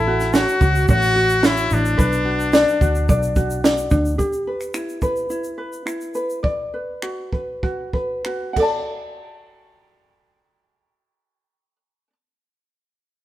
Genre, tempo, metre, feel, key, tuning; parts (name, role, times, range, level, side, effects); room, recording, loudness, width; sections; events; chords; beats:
acoustic pop; 92-109 BPM; 4/4; straight; D major; A4 = 445 Hz
bright trumpet; melody; 0.0-3.6 s; D4 to F#4; -20 LUFS; left 2 dB
ukulele; accompaniment; 0.0-12.1 s; D4 to A5; -22 LUFS; left 1 dB
vintage muted fingered electric bass; bass; 0.0-4.2 s; A1 to D2; -22 LUFS; equal
compact cocktail drum kit; drums; 0.2-8.7 s; crash cymbal, finger snaps, kick drum, shaker, snare drum; -20 LUFS; right 2 dB
moderate stone room reverb, RT60 1.3 s; band playing live in one room; -17 LUFS; side -14 dB against mid
0.0-4.2 A section; 4.2-8.9 B section; 8.9-11.5 C section
slowing down 4.2-8.9
0.0 A6; 2.0 Bm; 4.2 Em; 6.4 Bm; 8.6 D
0.33 0.88 1.43 | 1.99 2.54 3.08 3.63 | 4.19 4.74 5.29 5.86 | 6.43 7.02 7.62 8.24 | 8.88 9.53 10.18 10.83